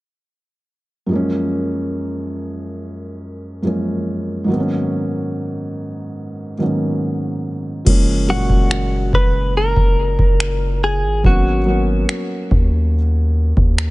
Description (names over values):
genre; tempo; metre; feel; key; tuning
contemporary R&B; 71 BPM; 4/4; straight; unclear; A4 = 440 Hz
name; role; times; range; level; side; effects
felt-muted upright piano; accompaniment; 1.1-13.9 s; F#2 to C#4; -21 LUFS; equal; none
long sustained 808-style bass; bass; 7.9-13.9 s; F#1 to D#2; -18 LUFS; equal; none
booming analog drum machine; drums; 7.9-13.9 s; crash cymbal, finger snaps, kick drum; -16 LUFS; equal; none
direct-recorded clean electric guitar; melody; 8.3-12.1 s; F#4 to B4; -21 LUFS; left 1 dB; digital delay
room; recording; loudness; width
little or no reverb; nothing above 11.0 kHz; -16 LUFS; side -20 dB against mid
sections
1.1-7.9 A section; 7.9-13.9 B section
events
none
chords
1.1 F#maj9; 4.5 G#m11; 7.9 F#maj9; 11.2 G#m11